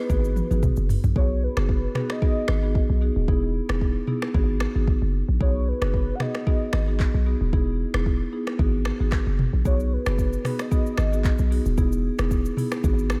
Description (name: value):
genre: afrobeats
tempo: 113 BPM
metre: 4/4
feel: swing 55% on 16ths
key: B major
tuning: A4 = 440 Hz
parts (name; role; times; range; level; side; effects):
- warm velvety synth lead; melody; 0.0-11.5 s; B4 to F#5; -35 LUFS; equal; chorus, diffuse ambient delay
- marimba with medium mallets; accompaniment; 0.0-13.0 s; B3 to G#4; -31 LUFS; equal; none
- warm 808-style bass; bass; 0.1-13.2 s; D#1 to B1; -26 LUFS; equal; none
- afro-pop drum kit; drums; 0.1-13.2 s; finger snaps, handclaps, hi-hat, kick drum, rim click, shaker, toms; -27 LUFS; equal; none
room: light reverb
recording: none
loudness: -23 LUFS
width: mono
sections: 0.0-1.2 A section; 1.2-13.2 B section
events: drum fill 0.1-1.2; hi-hats muted 1.2-9.7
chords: 0.1 G#m7; 1.2 B6; 3.3 Emaj7; 4.3 G#m7; 5.4 B6; 7.5 Emaj7; 8.6 G#m7; 9.7 B6; 11.8 Emaj7